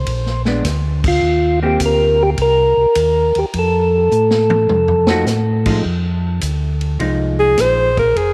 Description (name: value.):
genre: soul jazz organ trio.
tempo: 104 BPM.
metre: 4/4.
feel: swing 68% on 8ths.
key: unclear.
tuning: A4 = 441 Hz.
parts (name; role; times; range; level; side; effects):
mellow tonewheel organ; bass; 0.0-8.3 s; F1 to A2; -21 LUFS; equal; slow rotary speaker.
vintage drum kit; drums; 0.1-8.3 s; crash cymbal, hi-hat, kick drum, ride cymbal, snare drum, toms; -26 LUFS; equal; none.
vintage hollow-body jazz guitar; accompaniment; 0.5-7.9 s; F3 to G4; -24 LUFS; equal; none.
percussive tonewheel organ; melody; 1.1-5.3 s; F4 to Bb4; -18 LUFS; equal; slow rotary speaker, tape echo.
breathy alto saxophone; melody; 7.4-8.3 s; Ab4 to C5; -15 LUFS; equal; none.
room: wet spring reverb, RT60 2.9 s.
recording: none.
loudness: -15 LUFS.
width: mono.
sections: 0.0-5.8 A section; 5.8-8.3 B section.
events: band accent 0.9; drum fill 4.1-5.3; alto saxophone solo 5.8-8.3.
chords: 0.1 Bb7b9; 1.2 Eb6; 3.5 F7; 5.8 Bb7sus4.